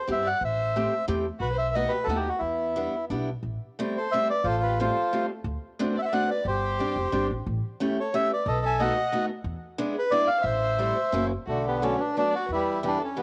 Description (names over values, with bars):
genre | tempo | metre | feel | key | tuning
musette waltz | 180 BPM | 3/4 | rubato | E minor, A minor from 3.5 s | A4 = 438 Hz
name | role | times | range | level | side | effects
bandoneon | melody | 0.0-13.2 s | D3 to G#5 | -28 LUFS | equal | none
dark violin | second line | 0.0-13.2 s | B3 to E5 | -38 LUFS | equal | cassette tape
picked steel-string acoustic guitar | accompaniment | 0.1-13.2 s | E3 to G4 | -32 LUFS | equal | cassette tape
upright bass | bass | 0.1-12.9 s | F1 to G2 | -34 LUFS | equal | none
room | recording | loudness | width
small room reverb | home recording on cassette | -27 LUFS | mono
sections
0.0-3.5 A section; 3.5-11.5 B section; 11.5-13.2 C section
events
none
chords
0.4 Am7; 1.4 B7; 2.4 Em7; 3.5 Am7; 4.5 Fadd9/A; 5.4 D7; 6.5 Gsus4; 7.5 A7; 8.5 B7; 9.4 E7; 10.4 Am7; 11.1 F#7; 11.5 Bm7; 12.5 Em